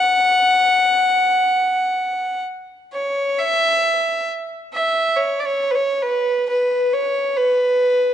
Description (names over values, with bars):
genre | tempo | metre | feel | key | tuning
celtic folk | 43-47 BPM (dotted quarters) | 6/8 | rubato | unclear | A4 = 439 Hz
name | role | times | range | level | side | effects
warm fiddle | solo | 0.0-8.1 s | B4 to F#5 | -16 LUFS | equal | none
room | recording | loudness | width
light reverb | dark, warm production, nothing above 10.5 kHz | -16 LUFS | side -10 dB against mid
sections
0.0-3.4 A section; 3.4-8.1 B section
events
none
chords
none